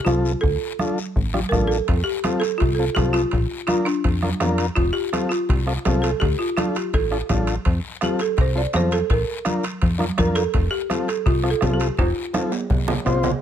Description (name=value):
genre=latin, cumbia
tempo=166 BPM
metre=4/4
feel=straight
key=F major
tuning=A4 = 439 Hz
part: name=folk marimba with hard mallets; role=melody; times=0.0-13.2 s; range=D4 to D5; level=-24 LUFS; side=right 1 dB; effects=none
part: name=combo organ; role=accompaniment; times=0.1-13.3 s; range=C4 to C5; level=-25 LUFS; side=left 4 dB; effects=overdrive
part: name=plucky analog bass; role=bass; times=0.1-13.3 s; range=F1 to F2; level=-23 LUFS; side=equal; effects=none
part: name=bombo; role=percussion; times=0.1-13.2 s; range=none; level=-24 LUFS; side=left 1 dB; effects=none
part: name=congas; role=percussion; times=0.1-13.3 s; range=none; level=-29 LUFS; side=right 3 dB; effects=none
part: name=guiro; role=percussion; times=0.1-13.4 s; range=none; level=-37 LUFS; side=left 7 dB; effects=none
part: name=timbales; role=percussion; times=1.9-13.3 s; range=none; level=-31 LUFS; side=right 6 dB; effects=none
room=little or no reverb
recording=close, detailed microphones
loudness=-19 LUFS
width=side -9 dB against mid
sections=0.0-13.4 A section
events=drum fill 12.0-13.4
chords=0.4 Dm; 1.9 F; 3.3 Bb; 4.8 F; 6.2 Dm; 7.7 F; 9.1 Bb; 10.5 F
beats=0.07 | 0.43 0.79 1.16 1.52 | 1.88 2.24 2.60 2.96 | 3.32 3.69 4.05 4.41 | 4.77 5.13 5.49 5.85 | 6.21 6.57 6.93 7.29 | 7.66 8.02 8.38 8.74 | 9.10 9.46 9.82 10.18 | 10.54 10.90 11.26 11.62 | 11.98 12.34 12.70 13.06